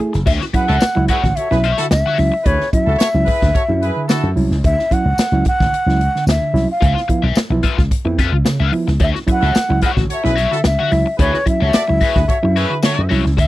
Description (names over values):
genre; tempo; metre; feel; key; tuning
funk; 110 BPM; 4/4; straight; unclear; A4 = 440 Hz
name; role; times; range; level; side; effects
crunchy overdriven guitar; accompaniment; 0.0-2.4, 6.8-13.5 s; E#4 to F#5; -22 LUFS; left 8 dB; wah
reed electric piano; stabs; 0.0-13.5 s; C#3 to G#4; -21 LUFS; right 3 dB; none
slap bass with an envelope filter; bass; 0.1-13.5 s; F#1 to C#3; -17 LUFS; equal; none
swinging big-band drum kit; drums; 0.1-13.5 s; crash cymbal, hi-hat, kick drum, snare drum; -18 LUFS; equal; none
bansuri; melody; 0.3-13.5 s; C#5 to F#5; -19 LUFS; left 1 dB; none
clear horn section; second line; 0.5-4.3, 9.3-13.1 s; E4 to D5; -23 LUFS; right 1 dB; none
tambourine; percussion; 0.8-13.0 s; none; -32 LUFS; left 2 dB; none
room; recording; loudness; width
little or no reverb; dry, close 1970s-style studio recording; -13 LUFS; side -16 dB against mid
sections
0.3-13.5 A section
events
none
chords
0.3 Dmaj9; 6.8 C#7#9; 9.0 Dmaj9